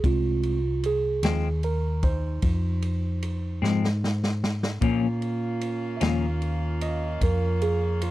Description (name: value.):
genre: slow blues.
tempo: 50 BPM (dotted quarters).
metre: 12/8.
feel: straight.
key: F minor.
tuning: A4 = 440 Hz.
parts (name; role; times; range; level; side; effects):
mellow tine electric piano; accompaniment; 0.0-8.1 s; Ab3 to F5; -30 LUFS; right 5 dB; phaser.
hollow-body short-scale fingered electric bass; bass; 0.0-8.1 s; C2 to Bb2; -26 LUFS; equal; none.
vintage drum kit; drums; 0.0-8.1 s; kick drum, ride cymbal, snare drum; -27 LUFS; equal; none.
clean electric guitar; accompaniment; 1.2-6.3 s; F2 to Db4; -26 LUFS; left 9 dB; harmonic tremolo.
clear saxophone section; sustained chords; 4.8-8.1 s; Bb3 to F4; -36 LUFS; left 1 dB; none.
room: little or no reverb.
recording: dry, close 1970s-style studio recording.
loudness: -23 LUFS.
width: side -15 dB against mid.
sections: 0.0-8.1 A section.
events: tine electric piano solo 0.0-8.1; drum fill 3.6-4.8.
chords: 0.0 Fm; 4.8 Bbm.